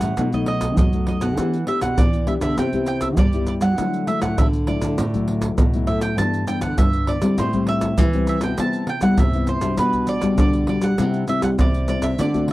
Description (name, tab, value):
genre	samba and choro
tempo	100 BPM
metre	4/4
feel	straight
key	unclear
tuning	A4 = 440 Hz
part	mandolin	melody	0.0-12.5 s	B4 to A5	-26 LUFS	right 3 dB	none
part	nylon-string guitar	accompaniment	0.0-12.5 s	F#2 to G4	-23 LUFS	left 4 dB	none
part	nylon-string guitar	bass	0.0-12.5 s	G2 to G3	-23 LUFS	right 1 dB	none
part	maracas, surdo and pandeiro	percussion	0.0-12.5 s	none	-22 LUFS	right 1 dB	none
room	little or no reverb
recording	dry, close 1970s-style studio recording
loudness	-18 LUFS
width	side -17 dB against mid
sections	0.0-12.5 A section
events	none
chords	0.2 B7; 1.4 Em7; 2.6 Cmaj7; 3.8 Dadd9; 6.2 G6; 7.4 Am7; 8.6 Cmaj7; 9.8 Gmaj7/B; 11.0 C